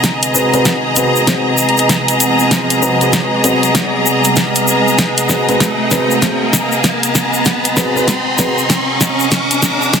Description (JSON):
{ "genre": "glitch hop", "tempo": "97 BPM", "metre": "4/4", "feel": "swing 62% on 16ths", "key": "unclear", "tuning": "A4 = 441 Hz", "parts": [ { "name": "dark analog pad", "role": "sustained chords", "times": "0.0-10.0 s", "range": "B#3 to F#5", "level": "-20 LUFS", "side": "right 1 dB", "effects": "wide subtle chorus, sidechain pumping" }, { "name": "electronic kick drum", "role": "drums", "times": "0.0-10.0 s", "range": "none", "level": "-28 LUFS", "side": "equal", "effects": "none" }, { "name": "pop drum kit", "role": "drums", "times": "0.0-10.0 s", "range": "hi-hat, snare drum", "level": "-16 LUFS", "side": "equal", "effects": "none" }, { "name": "egg shaker", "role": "percussion", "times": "0.0-10.0 s", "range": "none", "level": "-20 LUFS", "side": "left 2 dB", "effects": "none" }, { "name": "riser", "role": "sound effects", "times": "0.2-10.0 s", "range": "none", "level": "-19 LUFS", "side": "right 1 dB", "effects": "none" }, { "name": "bright symphonic string section", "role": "texture", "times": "0.0-10.0 s", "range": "G#4 to A#5", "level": "-16 LUFS", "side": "left 1 dB", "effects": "sidechain pumping" }, { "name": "dark concert grand piano", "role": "stabs", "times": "0.3-8.5 s", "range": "B#3 to B#4", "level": "-19 LUFS", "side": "equal", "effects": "vintage 12-bit sampler grit, sidechain pumping, digital delay" } ], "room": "moderate lush hall reverb, RT60 2.7 s", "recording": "dense, heavily limited modern master", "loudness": "-11 LUFS", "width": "side -7 dB against mid", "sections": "0.0-10.0 A section", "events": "build-up 0.0-10.0; drum fill 0.0-10.0; filter sweep on analog synth pad 0.0-10.0; riser 0.2-10.0", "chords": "0.0 G#7#9" }